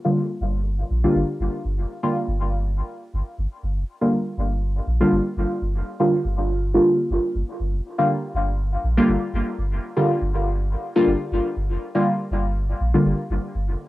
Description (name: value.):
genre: dub techno.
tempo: 121 BPM.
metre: 4/4.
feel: swing 54% on 16ths.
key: G minor.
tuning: A4 = 439 Hz.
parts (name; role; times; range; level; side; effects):
deep mellow chord stab; stabs; 0.0-13.1 s; D3 to F4; -21 LUFS; equal; chorus, phaser, cassette tape, dub echo.
pure sine sub bass; bass; 0.4-13.8 s; F1 to Bb1; -23 LUFS; equal; tube saturation.
room: moderate spring reverb, RT60 1.2 s, digital ambience.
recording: home recording on cassette.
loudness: -20 LUFS.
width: side -17 dB against mid.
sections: 0.0-13.9 A section.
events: none.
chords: 0.0 Gm7.